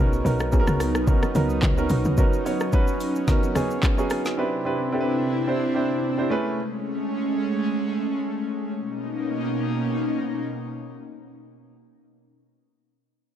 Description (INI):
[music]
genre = amapiano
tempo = 109 BPM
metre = 4/4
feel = swing 55% on 16ths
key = B major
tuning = A4 = 440 Hz
[part]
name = warm concert grand piano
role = accompaniment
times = 0.0-6.6 s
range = A3 to C#5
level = -25 LUFS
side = right 2 dB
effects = none
[part]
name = airy breathy pad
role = sustained chords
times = 0.0-11.7 s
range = B2 to E4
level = -27 LUFS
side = equal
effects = chorus, sidechain pumping
[part]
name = tight log drum bass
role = bass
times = 0.0-2.2 s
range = B1 to C#2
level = -24 LUFS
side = equal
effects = none
[part]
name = afro-pop drum kit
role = drums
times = 0.1-4.4 s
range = handclaps, hi-hat, kick drum, rim click, shaker, snare drum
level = -23 LUFS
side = equal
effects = none
[part]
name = bongos and congas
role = percussion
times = 0.5-4.0 s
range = none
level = -30 LUFS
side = left 2 dB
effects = none
[sound]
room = digital ambience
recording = dark, warm production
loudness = -21 LUFS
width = side -10 dB against mid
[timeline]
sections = 0.0-8.8 A section; 8.8-11.0 B section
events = drop 0.0-8.8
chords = 0.0 Bmaj9; 4.4 Cmaj9; 6.3 Amaj7; 8.8 Bmaj9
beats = 0.53 1.08 1.63 | 2.18 2.73 3.28 3.83 | 4.38 4.93 5.48 6.03 | 6.58 7.13 7.68 8.23 | 8.78 9.33 9.88 10.44